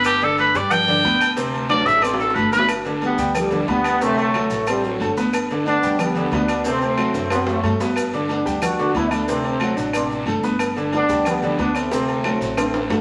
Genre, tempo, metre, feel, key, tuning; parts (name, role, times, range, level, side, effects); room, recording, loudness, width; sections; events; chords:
latin, salsa; 182 BPM; 4/4; straight; G major; A4 = 441 Hz
clear trumpet; melody; 0.0-2.7 s; G4 to G5; -20 LUFS; equal
bright upright piano; accompaniment; 0.0-13.0 s; C3 to C6; -26 LUFS; equal
upright bass; bass; 0.0-13.0 s; G1 to G2; -33 LUFS; equal
claves; percussion; 0.0-12.7 s; -36 LUFS; equal
guiro; percussion; 0.0-13.0 s; -40 LUFS; equal
maracas; percussion; 0.0-13.0 s; -42 LUFS; equal
agogo bells and timbales; percussion; 0.1-13.0 s; -30 LUFS; equal
congas; percussion; 0.1-13.0 s; -31 LUFS; equal
cowbell and bongos; percussion; 0.1-13.0 s; -33 LUFS; equal
mellow trombone section; melody; 3.0-12.9 s; D3 to F#4; -24 LUFS; equal
wet large studio reverb, RT60 1.2 s; -20 LUFS; mono
0.0-2.7 A section; 2.7-13.0 B section
trumpet solo 0.0-2.7; drum fill 1.7-2.7, 7.1-8.0, 11.9-13.0
0.0 G; 1.4 D7; 2.7 G; 4.0 D7; 5.3 G; 6.6 D7; 8.0 G; 9.3 D7; 10.6 G; 11.9 D7